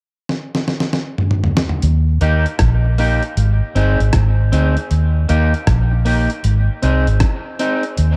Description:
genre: dub reggae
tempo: 78 BPM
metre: 4/4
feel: swing 64% on 16ths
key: Eb major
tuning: A4 = 440 Hz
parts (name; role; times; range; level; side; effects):
- dusty soul sampler-style drum kit; drums; 0.3-8.2 s; hi-hat, kick drum, rim click, snare drum, toms; -21 LUFS; equal; overdrive
- vintage muted fingered electric bass; bass; 1.8-8.2 s; G1 to Eb2; -16 LUFS; equal; none
- electric guitar at the edge of break-up; accompaniment; 2.2-7.8 s; Bb3 to Ab4; -23 LUFS; equal; dub echo
room: digital ambience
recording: echo-heavy mix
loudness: -16 LUFS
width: mono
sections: 0.0-1.8 A section; 1.8-8.2 B section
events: drum fill 0.3-1.8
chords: 0.0 N.C.; 1.8 Eb; 3.4 Ab; 4.9 Eb; 6.4 Ab

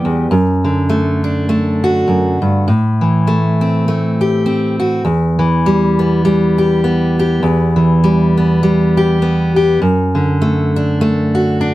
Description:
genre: folk, solo fingerstyle acoustic guitar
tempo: 101 BPM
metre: 4/4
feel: swing 57% on 8ths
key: E minor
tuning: A4 = 440 Hz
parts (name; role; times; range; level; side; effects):
- fingerpicked steel-string acoustic guitar; solo; 0.0-11.7 s; E2 to G4; -11 LUFS; equal; none
room: light reverb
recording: none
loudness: -11 LUFS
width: side -16 dB against mid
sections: 0.0-11.7 A section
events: none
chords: 0.3 D/F#; 2.7 Am; 5.1 Em; 9.8 D/F#

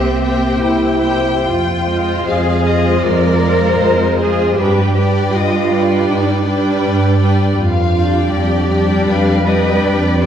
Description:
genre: classical, slow romantic movement for string orchestra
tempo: 71-82 BPM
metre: 4/4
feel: rubato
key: unclear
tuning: A4 = 438 Hz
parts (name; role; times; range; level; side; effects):
- rich chamber violin section; melody; 0.0-10.3 s; B4 to G5; -23 LUFS; left 6 dB; none
- rich chamber violin section; second line; 0.0-10.3 s; B4 to G5; -21 LUFS; left 4 dB; none
- rich chamber viola section; accompaniment; 0.0-10.3 s; G3 to G4; -18 LUFS; equal; none
- dark chamber cello section; bass; 0.0-10.3 s; C4 to D5; -18 LUFS; right 3 dB; none
- rich chamber double bass section; bass; 0.0-10.3 s; C2 to G2; -17 LUFS; right 1 dB; none
room: wet scoring stage reverb, RT60 1.6 s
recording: heard from further back in the room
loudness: -12 LUFS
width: side -9 dB against mid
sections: 0.0-10.3 A section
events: none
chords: 0.0 C7; 1.4 Fm7; 4.6 G; 7.6 G7/F

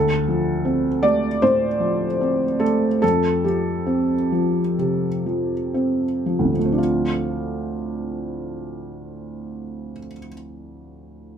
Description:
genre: neoclassical minimalist piano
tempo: 55-82 BPM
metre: 4/4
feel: rubato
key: D minor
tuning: A4 = 441 Hz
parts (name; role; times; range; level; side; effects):
- felt-muted upright piano; solo; 0.0-11.4 s; D2 to D5; -20 LUFS; equal; none
room: light reverb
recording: none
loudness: -19 LUFS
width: side -8 dB against mid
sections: 0.0-6.8 A section; 6.8-10.6 B section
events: slowing down 0.0-6.8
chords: 0.0 Dm7; 3.0 Fsus2; 6.8 Dm7

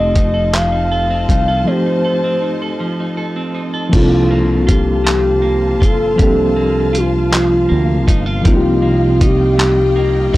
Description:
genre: slow six-eight R&B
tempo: 53 BPM (dotted quarters)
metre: 6/8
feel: straight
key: unclear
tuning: A4 = 435 Hz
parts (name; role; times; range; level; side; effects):
- gliding portamento lead; melody; 0.0-10.4 s; F4 to F5; -16 LUFS; equal; chorus
- clean electric guitar; second line; 0.0-10.4 s; C3 to A4; -22 LUFS; right 3 dB; wide subtle chorus, analog delay
- reed electric piano; accompaniment; 0.0-10.4 s; F3 to A4; -20 LUFS; equal; fast tremolo
- warm studio string section; sustained chords; 0.0-10.4 s; F4 to A5; -28 LUFS; left 3 dB; none
- fretless electric bass; bass; 0.0-10.4 s; F1 to D2; -17 LUFS; equal; tube saturation, lush chorus
- dusty soul sampler-style drum kit; drums; 0.2-10.4 s; crash cymbal, handclaps, hi-hat, kick drum; -14 LUFS; equal; none
room: little or no reverb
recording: dry, gritty hardware recording, transformer saturation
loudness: -12 LUFS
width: side -17 dB against mid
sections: 0.0-3.9 A section; 3.9-10.4 B section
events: break 1.7-3.9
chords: 0.0 F7; 3.9 Gm11

